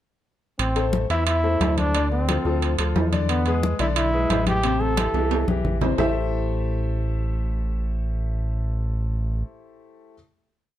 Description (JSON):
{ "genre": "latin, salsa", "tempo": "178 BPM", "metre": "4/4", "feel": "straight", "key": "A minor", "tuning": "A4 = 440 Hz", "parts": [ { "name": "bright trombone", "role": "melody", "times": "0.6-5.5 s", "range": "B3 to A4", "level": "-25 LUFS", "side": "equal", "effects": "none" }, { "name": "round analog bass", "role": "bass", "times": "0.6-9.4 s", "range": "A1 to E2", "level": "-24 LUFS", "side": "equal", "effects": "none" }, { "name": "congas", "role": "percussion", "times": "0.6-6.1 s", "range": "none", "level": "-28 LUFS", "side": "left 3 dB", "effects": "none" }, { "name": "timbales", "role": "percussion", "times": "0.6-6.1 s", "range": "none", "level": "-28 LUFS", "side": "right 8 dB", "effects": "none" }, { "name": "warm concert grand piano", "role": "accompaniment", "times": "0.8-10.1 s", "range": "C3 to E5", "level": "-28 LUFS", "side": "left 5 dB", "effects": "none" } ], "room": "light reverb", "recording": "dark, warm production", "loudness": "-20 LUFS", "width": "side -12 dB against mid", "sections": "0.6-6.0 A section; 6.0-8.7 final chord", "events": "drum fill 5.1-6.0", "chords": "0.6 Am; 1.9 Dm7; 3.3 E7; 4.6 Am7" }